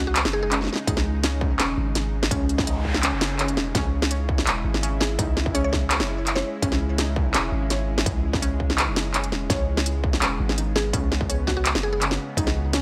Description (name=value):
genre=half-time drum and bass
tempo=167 BPM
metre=4/4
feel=half-time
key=C# minor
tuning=A4 = 441 Hz
part: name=mallet-like synth pluck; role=melody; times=0.0-0.5, 5.0-6.9, 10.8-12.0 s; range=F#4 to C#5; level=-33 LUFS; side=equal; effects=chorus, digital delay
part: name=bowed-like drone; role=sustained chords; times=0.0-12.8 s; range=C#3 to E4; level=-36 LUFS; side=equal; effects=built-in reverb, sidechain pumping
part: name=long sustained 808-style bass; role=bass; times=0.0-12.8 s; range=E1 to C#2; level=-29 LUFS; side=equal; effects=none
part: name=industrial drum kit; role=drums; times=0.2-12.8 s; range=handclaps, hi-hat, snare drum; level=-27 LUFS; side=equal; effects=small room ambience
part: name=warbly dusty pluck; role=arpeggios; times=0.5-12.8 s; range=C#4 to C#5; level=-34 LUFS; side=equal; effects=chorus, tape echo
part: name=electronic kick drum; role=drums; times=0.9-12.4 s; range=none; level=-29 LUFS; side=equal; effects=distortion, small room ambience
part: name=noise sweep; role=sound effects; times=2.6-3.7 s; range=none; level=-36 LUFS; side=equal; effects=none
room=light reverb, digital ambience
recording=none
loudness=-23 LUFS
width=mono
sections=0.0-12.8 A section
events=noise sweep 2.6-3.8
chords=0.0 C#m